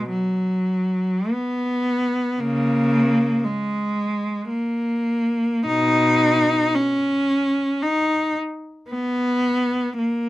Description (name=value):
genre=classical, free, expressive piece for unaccompanied cello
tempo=47-58 BPM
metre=3/4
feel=rubato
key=B major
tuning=A4 = 442 Hz
part: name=rich cello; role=solo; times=0.0-10.3 s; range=B2 to D#4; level=-19 LUFS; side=equal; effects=none
room=little or no reverb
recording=close, detailed microphones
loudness=-19 LUFS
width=side -16 dB against mid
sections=0.0-10.3 A section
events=none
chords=none